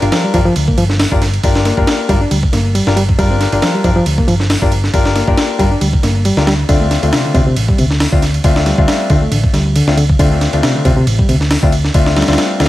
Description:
breakbeat, breaks; 137 BPM; 4/4; swing 55% on 16ths; G minor; A4 = 437 Hz
bright reed electric piano; riff; 0.0-12.7 s; C3 to D4; -17 LUFS; equal; vintage 12-bit sampler grit, digital delay
clear baby grand piano; stabs; 0.0-12.7 s; A3 to Bb4; -18 LUFS; left 4 dB; vintage 12-bit sampler grit, digital delay
hollow-body short-scale picked electric bass; bass; 0.0-12.7 s; G1 to D2; -15 LUFS; equal
breakbeat sampler-style drum kit; drums; 0.0-12.7 s; hi-hat, kick drum, ride cymbal, snare drum; -15 LUFS; equal
digital ambience; vinyl crackle; -10 LUFS; side -15 dB against mid
0.0-12.7 A section
0.0 Gm7; 6.7 Dm7

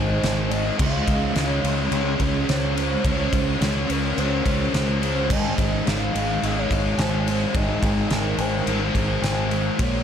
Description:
rock, shoegaze and dream pop; 107 BPM; 4/4; straight; A4 = 443 Hz
pure sine lead; melody; 0.0-10.0 s; Bb4 to F5; -29 LUFS; equal; chorus, tape echo
thick fuzz guitar; riff; 0.0-10.0 s; Ab2 to Db4; -24 LUFS; equal; distortion, wide subtle chorus
growling fingered electric bass; bass; 0.0-10.0 s; Ab1 to Db2; -26 LUFS; equal; overdrive
loose indie drum kit; drums; 0.2-9.9 s; crash cymbal, kick drum, ride cymbal, snare drum; -25 LUFS; equal
wet huge ambient reverb, RT60 8.3 s; dreamy mix soaked in reverb; -20 LUFS; side -8 dB against mid
0.0-9.8 A section
0.0 Ab; 0.8 Dbmaj7(no3); 5.3 Ab

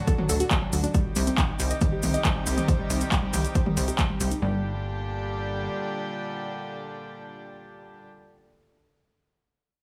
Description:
uplifting trance; 138 BPM; 4/4; straight; G harmonic minor; A4 = 440 Hz
rich chamber string section; sustained chords; 0.0-8.0 s; A2 to G4; -36 LUFS; equal; vintage 12-bit sampler grit, sidechain pumping
analog pluck; arpeggios; 0.1-4.6 s; F#3 to Eb5; -33 LUFS; equal; chorus, sidechain pumping, digital delay
electronic kick drum; drums; 0.1-4.1 s; -28 LUFS; equal; overdrive
punchy analog drum machine; drums; 0.1-4.4 s; handclaps, hi-hat, toms; -32 LUFS; equal
cabasa; percussion; 0.1-4.4 s; -38 LUFS; equal
plucky analog bass; bass; 0.3-5.7 s; G1 to D2; -30 LUFS; equal; sidechain pumping
light reverb; small room ambience; -26 LUFS; mono
0.0-4.4 A section; 4.4-7.9 B section
filter sweep on synth pluck 0.0-4.4
0.0 D; 0.9 Cm; 4.4 Gm

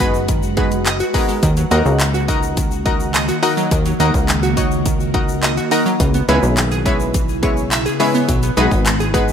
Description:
dance-pop; 105 BPM; 4/4; straight; A4 = 440 Hz
analog pluck; accompaniment; 0.0-9.3 s; G#3 to C#5; -20 LUFS; left 1 dB; chorus, sidechain pumping
ethereal airy pad; sustained chords; 0.0-9.3 s; C#3 to B4; -23 LUFS; equal; ensemble chorus, built-in reverb, phaser, sidechain pumping
plucky analog bass; bass; 0.0-9.3 s; F#1 to D#2; -19 LUFS; equal; sidechain pumping
pop drum kit; drums; 0.0-9.3 s; handclaps, hi-hat, kick drum; -20 LUFS; equal
tube shaker; percussion; 0.0-9.3 s; -34 LUFS; left 8 dB
glassy wavetable pluck; arpeggios; 0.3-9.1 s; D#3 to E5; -24 LUFS; right 4 dB; chorus, sidechain pumping, ping-pong delay
light reverb, digital ambience; bright 1980s-style digital production; -14 LUFS; side -8 dB against mid
0.0-9.3 A section
0.0 G#m7; 1.4 D#m; 6.0 C#m7; 8.3 B6

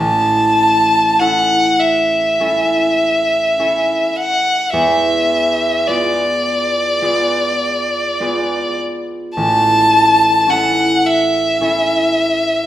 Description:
classical, romantic duo for violin and harp; 50-55 BPM; 4/4; rubato; A major; A4 = 440 Hz
rich violin; melody; 0.0-12.7 s; D5 to A5; -13 LUFS; equal
concert harp; accompaniment; 0.0-12.7 s; A1 to A4; -19 LUFS; equal
wet recital hall reverb, RT60 1.4 s; recorded in a church or concert hall; -12 LUFS; side -12 dB against mid
0.0-12.7 A section
0.0 A; 4.7 E7b9; 9.4 A

